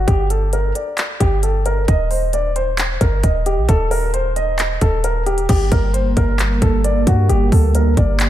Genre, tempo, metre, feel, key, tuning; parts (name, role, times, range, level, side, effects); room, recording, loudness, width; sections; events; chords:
hip hop, trap; 133 BPM; 4/4; half-time; G minor; A4 = 441 Hz
dark baby grand piano; melody; 0.0-8.3 s; F#4 to Eb5; -20 LUFS; equal; ping-pong delay
clean 808-style bass; bass; 0.0-8.3 s; Eb1 to G2; -18 LUFS; equal
trap drum kit; drums; 0.1-8.3 s; crash cymbal, handclaps, hi-hat, kick drum; -18 LUFS; equal
dark analog pad; sustained chords; 5.5-8.3 s; G3 to Bb3; -22 LUFS; right 3 dB; chorus
light reverb; faint mains hum; -14 LUFS; side -12 dB against mid
0.0-5.5 A section; 5.5-8.3 B section
0.0 G5; 1.9 Eb5; 5.5 Gm